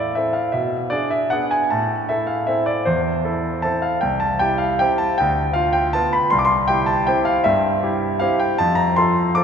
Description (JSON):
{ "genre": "classical, piano waltz", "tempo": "156 BPM", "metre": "3/4", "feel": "uneven beats, rubato", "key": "unclear", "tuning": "A4 = 440 Hz", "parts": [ { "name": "clear concert grand piano", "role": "solo", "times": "0.0-9.4 s", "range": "C2 to D6", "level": "-17 LUFS", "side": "equal", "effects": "none" } ], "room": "wet cathedral reverb, RT60 4.9 s", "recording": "recorded in a church or concert hall", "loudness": "-17 LUFS", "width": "side -7 dB against mid", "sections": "0.0-9.4 A section", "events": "none", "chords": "0.0 Am; 0.5 G#dim/B; 1.7 Am; 4.0 C; 5.2 Bdim/D; 6.3 C; 8.6 F" }